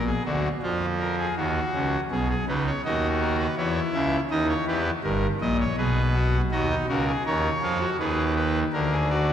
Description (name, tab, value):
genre	classical, baroque-style 3-part fugue for pipe organ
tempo	81 BPM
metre	3/4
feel	straight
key	G# minor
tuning	A4 = 444 Hz
part	pipe organ, trumpet	solo	0.0-9.3 s	G1 to E5	-22 LUFS	equal	none
room	wet cathedral reverb, RT60 3.9 s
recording	dark, warm production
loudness	-22 LUFS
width	side -9 dB against mid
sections	0.0-9.3 A section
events	none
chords	0.0 A#; 1.4 D#m; 2.1 G#m/B; 3.6 C#m/E; 4.3 D#; 5.8 G#m/B; 6.5 D#m; 8.0 G#m/D#; 8.7 A#/D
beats	0.62 1.37 | 2.10 2.83 3.57 | 4.30 5.04 5.78 | 6.52 7.26 8.00 | 8.74